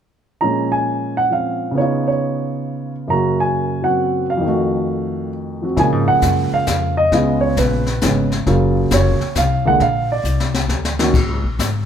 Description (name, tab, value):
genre	jazz piano trio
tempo	134 BPM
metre	3/4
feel	swing 66% on 8ths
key	Bb minor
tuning	A4 = 440 Hz
part	warm grand piano	melody	0.4-11.1 s	F2 to Bb5	-16 LUFS	right 1 dB	none
part	upright bass	bass	5.8-11.9 s	F1 to Bb2	-20 LUFS	left 2 dB	none
part	jazz brush drum kit	drums	5.8-11.9 s	brushed snare drum, hi-hat, kick drum, ride cymbal, snare drum	-21 LUFS	left 3 dB	none
room	moderate large studio reverb, RT60 1.2 s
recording	band playing live in one room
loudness	-15 LUFS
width	side -8 dB against mid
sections	0.4-5.8 A section; 5.8-11.9 B section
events	drum fill 10.2-11.1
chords	0.4 Bbm7; 1.8 Db9; 3.1 Gb; 4.4 F7b9; 5.8 Bbm7; 7.1 Db7; 8.5 Gbmaj7; 9.8 Bb; 11.1 Eb7(no3)